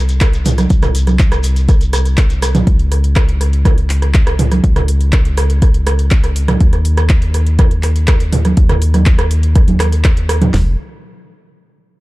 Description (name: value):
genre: progressive house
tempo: 122 BPM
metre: 4/4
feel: straight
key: unclear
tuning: A4 = 438 Hz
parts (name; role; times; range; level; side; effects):
- tight sequencer bass; bass; 0.0-10.8 s; F1 to Eb2; -14 LUFS; equal; sidechain pumping
- deep house drum kit; drums; 0.1-10.5 s; handclaps, hi-hat; -24 LUFS; equal; sidechain pumping on hats
- shekere; percussion; 0.1-2.6 s; none; -29 LUFS; left 3 dB; none
- deep house drum kit; drums; 0.2-10.7 s; hi-hat, kick drum, snare drum, toms; -11 LUFS; equal; none
- deep house drum kit; percussion; 0.2-10.5 s; congas, rim click, toms; -18 LUFS; right 2 dB; sidechain pumping on snare, sidechain pumping on toms, sidechain pumping on perc
room: little or no reverb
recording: dark, warm production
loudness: -10 LUFS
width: side -19 dB against mid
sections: 0.0-10.5 A section; 10.5-12.0 B section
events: none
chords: none